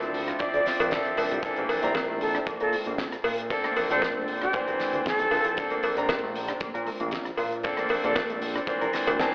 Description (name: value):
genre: nu-disco, nu disco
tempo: 116 BPM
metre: 4/4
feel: straight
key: unclear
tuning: A4 = 435 Hz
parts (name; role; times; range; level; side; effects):
- bright grand piano; accompaniment; 0.0-9.3 s; E3 to Bb5; -28 LUFS; equal; sidechain pumping, tape echo
- mellow electric guitar; riff; 0.0-9.2 s; F3 to D5; -34 LUFS; equal; wide subtle chorus, tape echo
- fat analog bass; bass; 0.0-9.3 s; F1 to Bb2; -33 LUFS; equal; none
- damped 70s drum kit; drums; 0.0-9.3 s; hi-hat, rim click, snare drum; -35 LUFS; equal; none
- kick drum; drums; 0.4-8.8 s; none; -34 LUFS; equal; none
- cowbell; percussion; 0.8-9.2 s; none; -29 LUFS; equal; none
- breathy bright silver concert flute; melody; 2.2-5.6 s; G4 to C5; -29 LUFS; equal; tape echo
room: moderate plate reverb, RT60 2.9 s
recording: played on a big sound system in a bare room, stone room reverb, telephone sound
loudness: -24 LUFS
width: side -29 dB against mid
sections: 0.0-9.3 A section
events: kick drops out 9.2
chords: 0.0 Dm9; 1.4 Bbmaj9#11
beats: 0.40 0.92 | 1.44 1.95 2.47 2.99 | 3.50 4.02 4.54 5.06 | 5.57 6.09 6.61 7.13 | 7.64 8.16 8.68 9.20